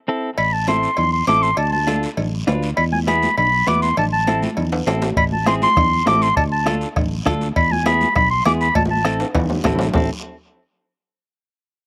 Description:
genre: latin, cumbia.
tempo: 201 BPM.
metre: 4/4.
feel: straight.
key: A harmonic minor.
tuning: A4 = 439 Hz.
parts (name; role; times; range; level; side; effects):
clean electric guitar; accompaniment; 0.1-10.1 s; B3 to B4; -26 LUFS; equal; slapback echo.
mellow clarinet; melody; 0.4-9.2 s; G#5 to D6; -20 LUFS; equal; none.
fingered electric bass; bass; 0.4-10.1 s; A1 to E2; -25 LUFS; equal; none.
congas; percussion; 0.4-10.0 s; none; -29 LUFS; equal; slapback echo.
cowbell and timbales; percussion; 0.4-10.0 s; none; -28 LUFS; equal; slapback echo.
guiro; percussion; 0.4-10.0 s; none; -38 LUFS; equal; none.
bombo; percussion; 5.2-10.0 s; none; -25 LUFS; equal; none.
room: little or no reverb.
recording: recorded outdoors, with no room sound.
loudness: -18 LUFS.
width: mono.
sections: 0.4-9.9 A section; 9.9-11.1 B section.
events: break 0.0-0.4; drum fill 4.7-5.2, 8.8-9.9.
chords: 0.4 Am; 1.6 Dm; 2.8 E; 4.0 Am; 6.4 Dm; 7.6 E; 8.8 Am.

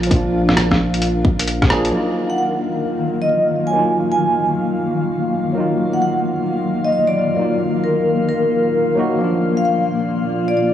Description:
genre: future garage.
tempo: 132 BPM.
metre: 4/4.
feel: swing 64% on 16ths.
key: Eb harmonic minor.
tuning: A4 = 440 Hz.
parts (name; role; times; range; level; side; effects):
tine electric piano; accompaniment; 0.0-10.7 s; F3 to Ab4; -20 LUFS; right 1 dB; overdrive, sidechain pumping, analog delay.
granular cloud pad; sustained chords; 0.0-10.7 s; Bb2 to F5; -22 LUFS; left 2 dB; built-in reverb, sidechain pumping.
warm sub bass; bass; 0.0-1.9 s; Bb1; -23 LUFS; equal; transformer saturation, sidechain pumping.
lo-fi sampler-style drum kit; drums; 0.0-1.9 s; hi-hat, rim click; -20 LUFS; equal; none.
electronic kick drum; drums; 0.1-1.7 s; none; -17 LUFS; equal; none.
drifting glass-harmonics texture; texture; 2.5-10.7 s; F4 to F5; -29 LUFS; right 1 dB; chorus, built-in reverb.
vibraphone with medium mallets; melody; 2.3-10.7 s; Bb4 to Ab5; -19 LUFS; equal; analog delay.
room: moderate huge ambient reverb, RT60 4.5 s.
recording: dry, gritty hardware recording, small room ambience.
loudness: -15 LUFS.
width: side -10 dB against mid.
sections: 0.0-1.9 A section; 1.9-10.7 B section.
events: band accent 1.7.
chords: 0.0 Bb; 1.9 Ebmadd9; 9.2 Bb.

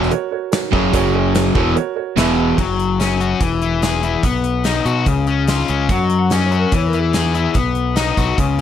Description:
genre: classic rock.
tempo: 145 BPM.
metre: 4/4.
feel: straight.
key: F# mixolydian.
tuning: A4 = 440 Hz.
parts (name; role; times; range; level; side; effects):
warm upright piano; accompaniment; 0.0-2.5 s; E4 to E5; -23 LUFS; right 14 dB; none.
crunchy overdriven guitar; riff; 0.0-2.6 s; E2 to F#3; -19 LUFS; right 18 dB; none.
overdriven semi-hollow guitar; riff; 0.0-8.6 s; E2 to G#4; -18 LUFS; left 7 dB; none.
growling fingered electric bass; bass; 0.0-8.6 s; E1 to B2; -20 LUFS; right 1 dB; overdrive.
gated 80s drum kit; drums; 0.0-8.6 s; crash cymbal, hi-hat, kick drum, snare drum; -20 LUFS; equal; none.
electric slide guitar; second line; 5.9-7.5 s; E4 to F#5; -26 LUFS; equal; none.
room: little or no reverb.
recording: none.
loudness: -15 LUFS.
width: side -10 dB against mid.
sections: 0.0-2.6 A section; 2.6-8.6 B section.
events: none.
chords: 0.0 F#; 2.2 E5; 2.6 F#5; 3.4 E; 4.2 B; 5.1 C#; 5.9 F#5; 6.7 E; 7.6 B.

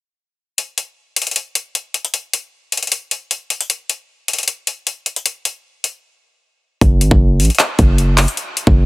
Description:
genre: hip hop, trap.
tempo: 154 BPM.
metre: 4/4.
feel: half-time.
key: F# minor.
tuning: A4 = 438 Hz.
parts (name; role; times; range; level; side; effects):
trap drum kit; drums; 0.6-8.8 s; handclaps, hi-hat, kick drum; -15 LUFS; equal; none.
hard-hitting 808-style bass; bass; 6.8-8.9 s; F#1 to A1; -13 LUFS; equal; none.
room: little or no reverb.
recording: heavily compressed radio sound.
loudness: -16 LUFS.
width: side -20 dB against mid.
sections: 0.6-6.8 A section; 6.8-8.9 B section.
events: break 6.0-6.8.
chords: none.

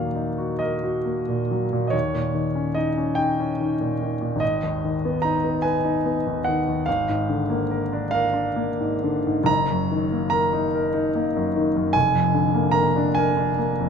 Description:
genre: classical, romantic nocturne for solo piano.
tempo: 42-51 BPM (dotted quarters).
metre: 6/8.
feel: rubato.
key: Eb minor.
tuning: A4 = 442 Hz.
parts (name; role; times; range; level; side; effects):
clear grand piano; solo; 0.0-13.9 s; F1 to Bb5; -20 LUFS; equal; none.
room: moderate recital hall reverb, RT60 1.4 s.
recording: close, detailed microphones.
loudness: -20 LUFS.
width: side -6 dB against mid.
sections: 0.0-13.9 A section.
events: none.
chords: 0.0 Ebm; 1.9 Eb7; 4.4 Abm; 6.9 Bb7/Ab; 9.5 Ebm/Gb; 12.0 Bb7/F.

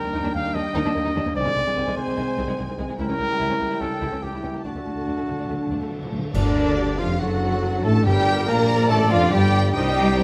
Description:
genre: classical, dramatic, fast romantic movement for symphony orchestra.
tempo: 143 BPM.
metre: 4/4.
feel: rubato.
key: G minor.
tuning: A4 = 437 Hz.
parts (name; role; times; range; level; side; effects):
warm symphonic violin section; melody; 0.0-10.2 s; D5 to Bb5; -34 LUFS; equal; none.
warm symphonic violin section; second line; 0.0-10.2 s; G3 to Bb4; -34 LUFS; equal; none.
dark symphonic viola section; accompaniment; 0.0-10.2 s; Eb3 to Eb5; -35 LUFS; equal; none.
warm French horn section; sustained chords; 0.0-9.9 s; D3 to G4; -32 LUFS; equal; none.
concert harp; arpeggios; 0.0-10.2 s; G2 to Bb5; -34 LUFS; equal; none.
mellow trumpet; stabs; 0.0-10.2 s; D4 to F5; -30 LUFS; equal; none.
warm symphonic cello section; bass; 0.0-10.2 s; C2 to Bb3; -31 LUFS; equal; none.
rich symphonic double bass section; bass; 0.1-10.2 s; C2 to Bb2; -29 LUFS; equal; none.
cymbal swell, clash cymbals and concert bass drum; percussion; 3.0-7.2 s; none; -35 LUFS; equal; none.
timpani; percussion; 4.7-8.7 s; G2 to D3; -32 LUFS; equal; none.
mellow clarinet; second line; 6.3-10.2 s; D4 to Bb4; -33 LUFS; equal; none.
mellow hollow concert flute; second line; 6.3-10.2 s; D5 to Bb5; -31 LUFS; equal; none.
warm trombone section; sustained chords; 6.3-9.9 s; D3 to Bb3; -34 LUFS; equal; none.
warm tuba; bass; 6.3-10.2 s; F1 to D2; -31 LUFS; equal; none.
room: wet recital hall reverb, RT60 1.5 s.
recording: none.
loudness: -22 LUFS.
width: mono.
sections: 0.0-6.3 A section; 6.3-10.2 B section.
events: timpani fill 4.7-6.3; band accent 6.3-6.8.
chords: 0.0 Ebmaj7; 1.4 Ab/C; 3.0 C#dim7; 4.7 D; 6.3 Gm/D; 7.2 D7/F#; 8.1 Gm.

